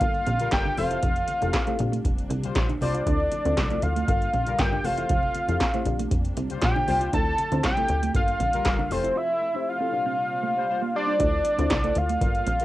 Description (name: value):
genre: early-eighties boogie funk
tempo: 118 BPM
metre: 4/4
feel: straight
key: D minor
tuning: A4 = 445 Hz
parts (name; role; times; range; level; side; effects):
- fat analog lead; melody; 0.0-12.6 s; C5 to A5; -25 LUFS; equal; none
- mellow FM electric piano; accompaniment; 0.0-12.6 s; Bb2 to D5; -34 LUFS; left 7 dB; chorus, plate reverb
- dark symphonic string section; sustained chords; 0.0-12.6 s; C3 to F4; -40 LUFS; equal; none
- plucky analog bass; bass; 0.0-12.6 s; F1 to D2; -28 LUFS; equal; none
- electro analog drum machine; drums; 0.0-12.6 s; handclaps, hi-hat, kick drum, snare drum; -27 LUFS; equal; cassette tape
- congas; percussion; 0.1-9.0 s; none; -40 LUFS; left 5 dB; none
- mellow electric guitar; riff; 0.3-12.6 s; A3 to F4; -33 LUFS; right 7 dB; wide subtle chorus
- analog synth brass; second line; 0.4-12.6 s; G3 to C5; -32 LUFS; left 6 dB; chorus, plate reverb
room: light reverb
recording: home recording on cassette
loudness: -22 LUFS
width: side -16 dB against mid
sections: 0.0-11.2 A section; 11.2-12.6 A section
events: none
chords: 0.0 Gm7; 0.8 Fmaj7; 1.8 Bb69; 3.1 Dm7; 4.1 Gm7; 4.8 Fmaj7; 5.9 Bb69; 7.1 Dm7; 8.1 Gm7; 8.9 Fmaj7; 9.9 Bb69; 11.2 Dm7